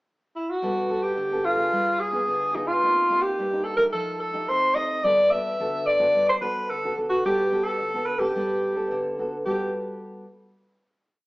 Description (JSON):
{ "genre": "samba and choro", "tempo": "109 BPM", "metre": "4/4", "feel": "straight", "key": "G major", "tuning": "A4 = 439 Hz", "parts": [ { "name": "warm alto saxophone", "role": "melody", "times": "0.4-9.7 s", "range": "Eb4 to E5", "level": "-22 LUFS", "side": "equal", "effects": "none" }, { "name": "nylon-string guitar", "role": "accompaniment", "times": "0.6-10.2 s", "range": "G2 to A4", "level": "-29 LUFS", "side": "equal", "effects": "none" } ], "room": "wet stone room reverb, RT60 1.1 s", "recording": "band playing live in one room, small speaker sound", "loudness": "-22 LUFS", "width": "side -21 dB against mid", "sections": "0.0-0.6 pickup bar; 0.6-9.5 A section; 9.5-11.3 final chord", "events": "none", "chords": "0.0 N.C.; 0.6 Gmaj9; 1.7 G7b9; 2.8 Cm7; 3.9 F9; 5.0 Gmaj9" }